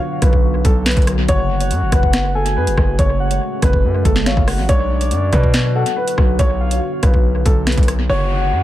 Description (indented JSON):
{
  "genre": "hip hop, drill",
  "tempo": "141 BPM",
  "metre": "4/4",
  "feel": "half-time",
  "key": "F# minor",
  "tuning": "A4 = 441 Hz",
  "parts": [
    { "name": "dark grand piano", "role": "melody", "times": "0.0-8.6 s", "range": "A4 to C#5", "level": "-23 LUFS", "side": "equal", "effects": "low-pass filter, analog delay" },
    { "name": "deep dark ambient pad", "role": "sustained chords", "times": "0.0-8.6 s", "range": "C#3 to F#4", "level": "-25 LUFS", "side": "equal", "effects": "chorus, built-in reverb, phaser" },
    { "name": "distorted 808-style bass", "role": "bass", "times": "0.2-8.6 s", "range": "F#1 to B2", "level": "-18 LUFS", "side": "equal", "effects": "distortion" },
    { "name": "drill drum kit", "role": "drums", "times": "0.2-8.0 s", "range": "hi-hat, kick drum, rim click, snare drum", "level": "-16 LUFS", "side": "equal", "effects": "analog delay" },
    { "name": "soft octave-layered synth lead", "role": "second line", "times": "1.3-8.6 s", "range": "D5 to G#5", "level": "-24 LUFS", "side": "left 2 dB", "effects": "chorus, phaser, analog delay" },
    { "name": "downlifter", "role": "sound effects", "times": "8.1-8.6 s", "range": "none", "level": "-28 LUFS", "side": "left 1 dB", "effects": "none" }
  ],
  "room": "digital ambience",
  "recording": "echo-heavy mix",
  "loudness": "-13 LUFS",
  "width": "side -14 dB against mid",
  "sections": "0.0-8.1 A section",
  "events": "none",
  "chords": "0.0 Bm; 1.3 F#madd9; 4.7 Bm; 8.1 F#madd9",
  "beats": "0.01 0.43 0.86 | 1.29 1.71 2.14 2.56 | 2.99 3.41 3.84 4.26 | 4.69 5.12 5.54 5.97 | 6.39 6.82 7.24 7.67 | 8.09 8.52"
}